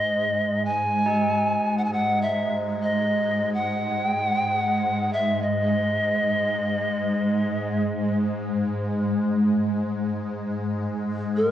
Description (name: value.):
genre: world meditative, free-time meditation music.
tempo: free time.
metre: none.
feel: none.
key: unclear.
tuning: A4 = 440 Hz.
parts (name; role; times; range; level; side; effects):
polished pan flute; melody; 0.0-11.5 s; A#4 to G#5; -24 LUFS; equal; tape echo.
swarming drone; drone; 0.0-11.5 s; G#2 to G#3; -24 LUFS; equal; built-in reverb.
tubular bells; texture; 1.1-8.4 s; D#4; -34 LUFS; right 1 dB; none.
room: wet recital hall reverb, RT60 1.5 s, small room ambience.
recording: worn, warbling old tape, cassette tape, warbly pitch drift.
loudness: -22 LUFS.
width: side -11 dB against mid.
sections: 0.0-11.5 A section.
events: none.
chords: none.